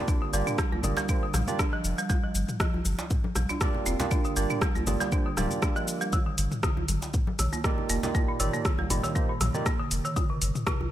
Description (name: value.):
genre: afro house.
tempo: 119 BPM.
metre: 4/4.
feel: swing 54% on 16ths.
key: unclear.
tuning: A4 = 437 Hz.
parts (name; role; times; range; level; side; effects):
barky tine electric piano; stabs; 0.0-9.7 s; Bb3 to D5; -33 LUFS; right 4 dB; overdrive, wide subtle chorus, sidechain pumping, tape echo.
folk marimba with hard mallets; arpeggios; 0.1-10.8 s; Bb2 to D4; -31 LUFS; right 1 dB; sidechain pumping, tape echo.
deep house drum kit; drums; 0.1-10.8 s; hi-hat, rim click, shaker, toms; -32 LUFS; left 1 dB; none.
electronic kick drum; drums; 0.1-10.8 s; none; -27 LUFS; equal; none.
djembe; percussion; 0.1-10.9 s; none; -37 LUFS; right 1 dB; none.
warm sub bass; bass; 0.3-10.5 s; D1 to Bb1; -28 LUFS; equal; tube saturation, sidechain pumping.
congas; percussion; 0.7-10.9 s; none; -37 LUFS; left 3 dB; none.
room: light reverb.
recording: none.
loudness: -25 LUFS.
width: side -12 dB against mid.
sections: 0.0-10.9 A section.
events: none.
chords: 0.0 Gm7; 6.1 Ebmaj7; 10.2 N.C..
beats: | 0.08 0.59 1.09 1.59 | 2.10 2.60 3.11 3.61 | 4.12 4.62 5.12 5.63 | 6.13 6.64 7.14 7.64 | 8.15 8.65 9.16 9.66 | 10.16 10.67.